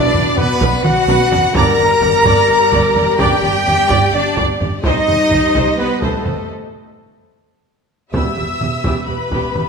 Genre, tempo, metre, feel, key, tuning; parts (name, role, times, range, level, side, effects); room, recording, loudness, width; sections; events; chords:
cinematic, epic orchestral film score; 255 BPM (eighths); 7/8; straight; E minor; A4 = 440 Hz
warm symphonic violin section; melody; 0.0-9.7 s; A4 to E6; -25 LUFS; left 4 dB
concert flute; second line; 0.0-6.5 s; A4 to Bb5; -24 LUFS; equal
warm symphonic violin section; second line; 0.0-9.7 s; A4 to Bb5; -24 LUFS; left 2 dB
clear symphonic viola section; accompaniment; 0.0-9.6 s; B3 to Eb5; -23 LUFS; right 2 dB
mellow French horn section; sustained chords; 0.0-8.3 s; A3 to Bb4; -19 LUFS; left 6 dB
rich symphonic string section; sustained chords; 0.0-9.7 s; G3 to E5; -26 LUFS; equal
warm trombone section; sustained chords; 0.0-5.0, 8.1-8.3 s; G2 to Eb4; -28 LUFS; right 4 dB
clear trumpet section; stabs; 0.0-9.7 s; A4 to Bb5; -20 LUFS; right 1 dB
rich symphonic cello section; bass; 0.0-9.6 s; E2 to Bb4; -22 LUFS; right 4 dB
rich symphonic double bass section; bass; 0.1-9.6 s; E1 to C2; -22 LUFS; right 4 dB
taiko ensemble; drums; 0.1-9.7 s; -21 LUFS; equal
wet scoring stage reverb, RT60 1.7 s; -12 LUFS; side -5 dB against mid
0.0-8.1 A section; 8.1-9.7 B section
drum fill 0.8-1.6, 7.4-8.1; break 6.5-8.1
0.0 Bm; 1.6 Gm; 4.8 Cm; 8.1 Em